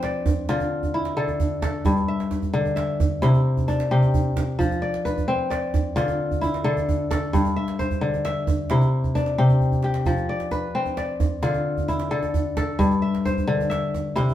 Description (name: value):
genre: west african traditional, West African string and xylophone music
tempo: 88 BPM (dotted quarters)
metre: 12/8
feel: straight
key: unclear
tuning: A4 = 441 Hz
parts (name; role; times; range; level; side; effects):
- kora; arpeggios; 0.0-14.3 s; G2 to E5; -21 LUFS; left 1 dB; none
- djembe; percussion; 0.0-14.3 s; none; -26 LUFS; right 3 dB; none
room: wet studio reverb, RT60 0.8 s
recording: band playing live in one room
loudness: -20 LUFS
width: side -12 dB against mid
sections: 0.0-14.3 A section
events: drum fill 9.6-10.1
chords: 0.5 Dm; 1.9 G5; 3.2 C; 4.6 F5; 6.0 Dm; 7.3 G5; 8.7 C; 10.1 F5; 11.4 Dm; 12.8 G5